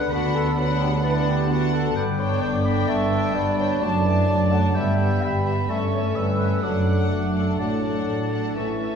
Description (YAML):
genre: quick classical-period movement for symphony orchestra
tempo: 129 BPM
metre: 4/4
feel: straight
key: D major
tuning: A4 = 440 Hz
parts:
  - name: warm studio violin section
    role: melody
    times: 0.0-9.0 s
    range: E5 to A5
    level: -33 LUFS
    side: left 4 dB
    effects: none
  - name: clear oboe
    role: second line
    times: 0.0-9.0 s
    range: E5 to B5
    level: -33 LUFS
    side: right 2 dB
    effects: none
  - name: rich studio violin section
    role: second line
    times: 0.0-9.0 s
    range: B3 to D4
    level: -34 LUFS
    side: left 4 dB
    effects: none
  - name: silver concert flute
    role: second line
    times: 0.0-9.0 s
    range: A5 to E6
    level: -34 LUFS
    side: equal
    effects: none
  - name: mellow bassoon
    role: accompaniment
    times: 0.0-9.0 s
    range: D3 to A3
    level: -32 LUFS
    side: equal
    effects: none
  - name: warm studio viola section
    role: accompaniment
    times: 0.0-9.0 s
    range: G3 to B3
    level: -32 LUFS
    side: left 2 dB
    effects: none
  - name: dark French horn section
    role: sustained chords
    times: 0.0-9.0 s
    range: E3 to D4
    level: -30 LUFS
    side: left 1 dB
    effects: none
  - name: mellow trumpet section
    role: stabs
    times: 0.0-9.0 s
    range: F#4 to G5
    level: -28 LUFS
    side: left 1 dB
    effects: none
  - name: dark studio cello section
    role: bass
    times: 0.0-9.0 s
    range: F#2 to D3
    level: -25 LUFS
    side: right 2 dB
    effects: none
  - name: dark studio double bass section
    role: bass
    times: 0.0-9.0 s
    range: F#1 to D2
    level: -27 LUFS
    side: right 1 dB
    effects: none
room: wet scoring stage reverb, RT60 1.6 s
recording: heard from further back in the room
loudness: -20 LUFS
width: side -7 dB against mid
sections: 0.0-9.0 A section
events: none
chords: 0.1 Bm/D; 2.0 G; 3.8 D/F#; 4.8 Em/G; 5.7 A7/G; 6.6 D/F#; 7.6 D/A